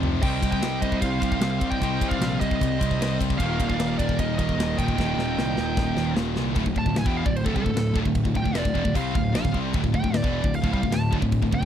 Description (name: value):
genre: heavy metal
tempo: 151 BPM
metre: 4/4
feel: straight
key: D phrygian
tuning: A4 = 440 Hz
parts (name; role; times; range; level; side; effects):
- heavy high-gain guitar; riff; 0.0-11.7 s; D2 to C4; -33 LUFS; equal; distortion
- high-gain distorted guitar; riff; 0.0-11.7 s; D2 to C4; -29 LUFS; left 12 dB; distortion
- sludgy distorted guitar; riff; 0.0-11.7 s; D2 to C4; -28 LUFS; right 9 dB; overdrive
- fuzz picked electric bass; bass; 0.0-11.7 s; D1 to C2; -28 LUFS; equal; overdrive
- tight metal drum kit; drums; 0.0-11.7 s; crash cymbal, kick drum, ride cymbal, snare drum, toms; -27 LUFS; equal; none
- high-gain lead guitar; melody; 0.2-11.7 s; A4 to A5; -31 LUFS; right 1 dB; distortion
- high-gain lead guitar; second line; 0.2-6.1 s; Bb4 to Eb5; -38 LUFS; right 4 dB; distortion
room: little or no reverb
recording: dry, close 1970s-style studio recording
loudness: -21 LUFS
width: side -9 dB against mid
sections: 0.0-6.6 A section; 6.6-11.7 B section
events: drum fill 0.0, 5.0-6.6; lead electric guitar solo 6.6-11.7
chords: 0.2 Cm; 3.4 Eb; 6.6 Dm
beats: | 0.22 0.62 1.01 1.41 | 1.81 2.20 2.60 3.00 | 3.39 3.79 4.19 4.58 | 4.98 5.38 5.78 6.17 | 6.57 6.97 7.37 7.76 | 8.16 8.56 8.95 9.35 | 9.75 10.14 10.54 10.94 | 11.33